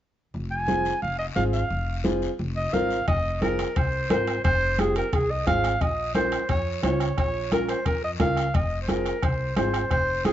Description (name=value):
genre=latin, cumbia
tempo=176 BPM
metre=4/4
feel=straight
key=F minor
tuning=A4 = 441 Hz
part: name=upright bass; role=bass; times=0.3-10.3 s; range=F1 to F2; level=-29 LUFS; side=equal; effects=none
part: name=congas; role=percussion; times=0.3-10.3 s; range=none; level=-31 LUFS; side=right 1 dB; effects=none
part: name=guiro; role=percussion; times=0.3-10.3 s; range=none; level=-42 LUFS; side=left 6 dB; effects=none
part: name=breathy clarinet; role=melody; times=0.5-10.3 s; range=Ab4 to Ab5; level=-26 LUFS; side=right 1 dB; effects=plate reverb
part: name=warm upright piano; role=accompaniment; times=0.7-10.3 s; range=C4 to C5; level=-27 LUFS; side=left 1 dB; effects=none
part: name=bombo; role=percussion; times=3.1-10.3 s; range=none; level=-28 LUFS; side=equal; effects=none
part: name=timbales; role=percussion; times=3.1-10.3 s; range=none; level=-37 LUFS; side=right 4 dB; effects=none
room=moderate studio reverb, RT60 0.5 s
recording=worn, warbling old tape, cassette tape, warbly pitch drift, nothing above 7.7 kHz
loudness=-22 LUFS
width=side -11 dB against mid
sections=0.3-3.1 A section; 3.1-10.3 B section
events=none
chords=0.3 Fm; 5.8 Bbm; 8.5 Fm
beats=| 0.34 0.68 1.02 1.36 | 1.71 2.05 2.39 2.73 | 3.08 3.42 3.76 4.10 | 4.44 4.78 5.12 5.47 | 5.81 6.15 6.49 6.83 | 7.18 7.52 7.86 8.20 | 8.54 8.88 9.23 9.57 | 9.91 10.25